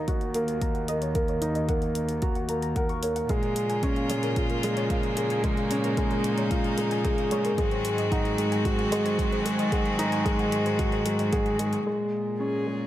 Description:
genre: piano and strings electronica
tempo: 112 BPM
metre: 4/4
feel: straight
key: Bb minor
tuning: A4 = 440 Hz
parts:
  - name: dark upright piano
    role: riff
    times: 0.0-12.9 s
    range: Ab3 to Bb4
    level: -27 LUFS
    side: equal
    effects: tape echo
  - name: warm studio cello section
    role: bass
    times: 0.0-12.9 s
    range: Eb2 to Bb2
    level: -32 LUFS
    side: equal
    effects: sidechain pumping
  - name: soft round pluck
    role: arpeggios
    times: 0.1-11.9 s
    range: Ab4 to Db6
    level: -37 LUFS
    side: left 1 dB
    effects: wide subtle chorus, sidechain pumping, tape echo
  - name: electronic hi-hat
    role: drums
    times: 0.1-11.8 s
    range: none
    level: -39 LUFS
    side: left 1 dB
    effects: none
  - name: electronic kick drum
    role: drums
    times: 0.1-11.4 s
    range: none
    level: -29 LUFS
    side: equal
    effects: none
  - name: bright string quartet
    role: sustained chords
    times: 3.3-12.9 s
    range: Db3 to Gb4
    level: -32 LUFS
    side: equal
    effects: none
  - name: dark viola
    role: melody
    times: 12.4-12.9 s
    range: Ab4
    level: -33 LUFS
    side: equal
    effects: none
room: light reverb, small room ambience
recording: none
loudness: -24 LUFS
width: side -13 dB against mid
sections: 0.0-11.9 A section; 11.9-12.9 B section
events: none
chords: 0.0 Ebm7; 3.3 Bbm7; 7.6 Ab7; 11.9 Bbm7

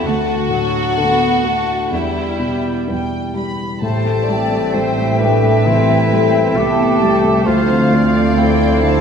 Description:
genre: cinematic, emotional film score for orchestra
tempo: 62-67 BPM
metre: 4/4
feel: rubato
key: A minor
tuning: A4 = 440 Hz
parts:
  - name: warm studio violin section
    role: melody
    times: 0.0-9.0 s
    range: E5 to B5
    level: -27 LUFS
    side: left 3 dB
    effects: none
  - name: rich studio violin section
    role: second line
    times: 0.0-9.0 s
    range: E4 to D5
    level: -21 LUFS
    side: left 1 dB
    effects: none
  - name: felt-muted upright piano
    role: accompaniment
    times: 0.0-9.0 s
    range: D2 to A4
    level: -20 LUFS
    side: left 1 dB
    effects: none
  - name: rich studio viola section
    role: accompaniment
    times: 0.0-9.0 s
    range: F#3 to C4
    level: -23 LUFS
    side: right 2 dB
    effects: none
  - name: concert harp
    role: arpeggios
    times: 0.0-9.0 s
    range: A2 to E5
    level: -22 LUFS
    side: left 7 dB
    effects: none
  - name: dark studio cello section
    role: bass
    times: 0.1-9.0 s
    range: C2 to A2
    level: -23 LUFS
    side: right 3 dB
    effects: none
  - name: bright flute section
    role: second line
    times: 3.8-9.0 s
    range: F5 to G5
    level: -24 LUFS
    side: left 1 dB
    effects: none
  - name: warm clarinet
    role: second line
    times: 3.8-9.0 s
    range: C5 to E5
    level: -23 LUFS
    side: right 1 dB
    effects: none
  - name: mellow French horn section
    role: sustained chords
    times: 3.8-9.0 s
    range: F3 to G4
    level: -22 LUFS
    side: left 2 dB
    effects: none
  - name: warm studio double bass section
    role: bass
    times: 3.8-9.0 s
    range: A1 to D2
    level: -23 LUFS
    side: right 5 dB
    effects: none
  - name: mellow duduk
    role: melody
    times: 4.3-9.0 s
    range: C4 to G4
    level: -21 LUFS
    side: right 1 dB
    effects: none
room: wet scoring stage reverb, RT60 1.6 s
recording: minimal, uncompressed stereo recording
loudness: -13 LUFS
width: side -6 dB against mid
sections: 0.0-3.8 A section; 3.8-9.0 B section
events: none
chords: 0.0 D; 1.9 Em; 3.8 Am7; 7.5 Dm7

